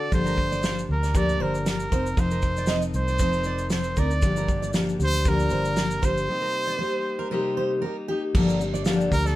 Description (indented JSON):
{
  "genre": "acoustic pop",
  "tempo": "117 BPM",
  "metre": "4/4",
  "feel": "swing 55% on 16ths",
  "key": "G minor",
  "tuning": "A4 = 437 Hz",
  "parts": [
    { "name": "clear trumpet", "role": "melody", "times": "0.0-9.4 s", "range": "A4 to D5", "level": "-28 LUFS", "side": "right 2 dB", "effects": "none" },
    { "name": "fingerpicked steel-string acoustic guitar", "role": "accompaniment", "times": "0.0-9.4 s", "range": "G2 to Bb4", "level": "-26 LUFS", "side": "left 2 dB", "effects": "none" },
    { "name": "vintage muted fingered electric bass", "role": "bass", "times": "0.1-9.4 s", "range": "F1 to D2", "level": "-27 LUFS", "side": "equal", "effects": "none" },
    { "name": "loose indie drum kit", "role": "drums", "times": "0.1-9.4 s", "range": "crash cymbal, kick drum, shaker, snare drum", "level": "-26 LUFS", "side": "equal", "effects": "none" },
    { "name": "fingerpicked steel-string acoustic guitar", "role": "arpeggios", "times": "0.3-9.4 s", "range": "G4 to F5", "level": "-33 LUFS", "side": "right 6 dB", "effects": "none" }
  ],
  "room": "light reverb",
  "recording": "band playing live in one room",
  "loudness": "-22 LUFS",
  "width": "side -15 dB against mid",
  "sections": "0.1-8.3 A section; 8.3-9.4 B section",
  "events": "break 6.3-8.3",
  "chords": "0.1 Gm7; 1.9 F7sus4; 4.2 Gm7; 6.3 Cm7; 8.3 Gm7",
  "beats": "| 0.12 0.63 1.15 1.66 | 2.18 2.69 3.21 3.72 | 4.23 4.75 5.26 5.78 | 6.29 6.80 7.32 7.83 | 8.34 8.86"
}